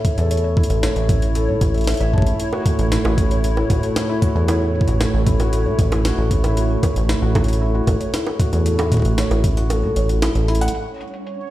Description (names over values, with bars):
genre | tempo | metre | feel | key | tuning
IDM | 115 BPM | 4/4 | straight | F# minor | A4 = 440 Hz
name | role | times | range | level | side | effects
hollow soft pad | sustained chords | 0.0-11.5 s | A2 to C#5 | -26 LUFS | right 2 dB | chorus
felt-muted upright piano | arpeggios | 0.0-10.8 s | E4 to A5 | -24 LUFS | left 2 dB | low-pass filter, digital delay
electronic kick drum | drums | 0.0-9.5 s | none | -17 LUFS | equal | none
jungle sampler-style drum kit | drums | 0.0-11.4 s | bongos, hi-hat, snare drum | -26 LUFS | right 1 dB | low-pass filter on hats, low-pass filter on snare, low-pass filter on perc
deep acid bass | bass | 0.2-10.7 s | A1 to A2 | -19 LUFS | equal | none
bubbling stepped-filter texture | texture | 10.7-11.5 s | C#4 to C#5 | -32 LUFS | right 5 dB | chorus, built-in reverb, sidechain pumping
room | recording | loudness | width
digital ambience | played on a big sound system in a bare room, stone room reverb | -16 LUFS | side -15 dB against mid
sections
0.0-10.7 A section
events
kick drops out 9.7-10.7; drum fill 10.5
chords
0.0 A; 2.4 F#m7/A; 10.7 G5